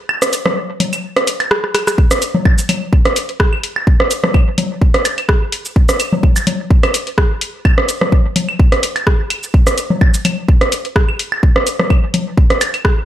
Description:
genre	techno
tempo	127 BPM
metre	4/4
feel	swing 54% on 16ths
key	none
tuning	none
part	electronic claves, woodblock, rim click and congas	percussion	0.1-12.8 s	none	-16 LUFS	equal	studio reverb, dub echo
part	house drum kit	drums	0.2-12.9 s	cabasa, hi-hat, rim click	-18 LUFS	equal	studio reverb
part	electronic kick drum	drums	2.0-12.9 s	none	-11 LUFS	equal	studio reverb
room	little or no reverb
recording	none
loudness	-12 LUFS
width	side -12 dB against mid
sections	0.0-13.1 A section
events	kick drops out 0.1-2.0; drum fill 1.6-2.0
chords	none

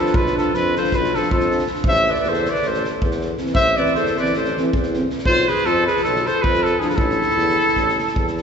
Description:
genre	balkan folk, Balkan brass band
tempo	317 BPM (eighths)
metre	9/8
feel	straight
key	A harmonic minor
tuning	A4 = 440 Hz
part	clear trumpet	melody	0.0-8.3 s	G#4 to E5	-20 LUFS	right 1 dB	none
part	warm clarinet	second line	0.0-8.3 s	E4 to C5	-24 LUFS	left 3 dB	none
part	dark euphonium	accompaniment	0.0-7.0 s	C4 to D4	-28 LUFS	left 2 dB	none
part	warm trombone	accompaniment	0.0-7.0 s	E3 to F3	-30 LUFS	right 4 dB	none
part	warm tuba	bass	0.1-8.4 s	A1 to F2	-25 LUFS	right 1 dB	none
part	loose indie drum kit	percussion	0.1-8.4 s	kick drum, snare drum	-25 LUFS	equal	none
room	wet church reverb, RT60 2.7 s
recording	recorded in a church or concert hall, nothing above 7.8 kHz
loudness	-16 LUFS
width	side -6 dB against mid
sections	0.0-8.4 A section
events	none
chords	0.0 Bdim; 1.9 Am; 5.3 B(b5, no3); 7.0 A5

